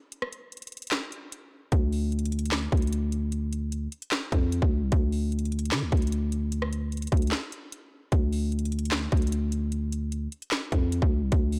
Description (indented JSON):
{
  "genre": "hip hop, trap",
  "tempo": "150 BPM",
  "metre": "4/4",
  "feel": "half-time",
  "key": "D minor",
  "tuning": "A4 = 439 Hz",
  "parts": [
    { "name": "trap drum kit", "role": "drums", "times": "0.1-11.6 s", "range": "handclaps, hi-hat, kick drum, rim click, snare drum", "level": "-30 LUFS", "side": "equal", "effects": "none" },
    { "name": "growling 808-style bass", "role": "bass", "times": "1.7-11.6 s", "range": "C2 to D3", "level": "-29 LUFS", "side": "equal", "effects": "none" }
  ],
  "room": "digital ambience",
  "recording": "blown-out, overdriven recording, overdrive",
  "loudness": "-28 LUFS",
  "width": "mono",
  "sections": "0.0-11.6 A section",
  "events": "break 0.0-1.7, 7.3-8.1",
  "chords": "none",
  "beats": "| 0.12 0.52 0.92 1.32 | 1.72 2.12 2.52 2.92 | 3.32 3.72 4.12 4.52 | 4.92 5.32 5.72 6.12 | 6.52 6.92 7.32 7.72 | 8.12 8.52 8.92 9.32 | 9.72 10.12 10.52 10.92 | 11.32"
}